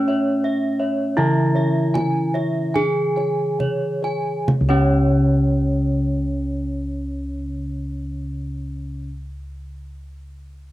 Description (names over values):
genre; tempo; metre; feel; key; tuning
Javanese gamelan; 33-42 BPM; 4/4; straight; unclear; A4 = 440 Hz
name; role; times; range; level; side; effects
gamelan-type bronze metallophone; melody; 0.0-9.1 s; C#4 to G#4; -23 LUFS; right 1 dB; cassette tape
gamelan-type bronze metallophone; accompaniment; 0.0-9.1 s; C#3 to A3; -25 LUFS; left 1 dB; cassette tape
gamelan-type bossed gongs; arpeggios; 0.0-9.1 s; C#5 to G#5; -32 LUFS; left 7 dB; cassette tape
gamelan-type bronze metallophone; arpeggios; 0.0-9.1 s; C#5 to G#5; -28 LUFS; right 3 dB; cassette tape
gamelan-type bossed gongs; bass; 0.0-9.0 s; C#2 to A4; -25 LUFS; equal; none
kendang; percussion; 0.1-5.4 s; none; -24 LUFS; right 1 dB; none
room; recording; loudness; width
moderate booth ambience, RT60 0.2 s; home recording on cassette; -18 LUFS; side -15 dB against mid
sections
0.0-4.5 A section; 4.5-10.7 B section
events
slowing down 0.0-4.5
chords
none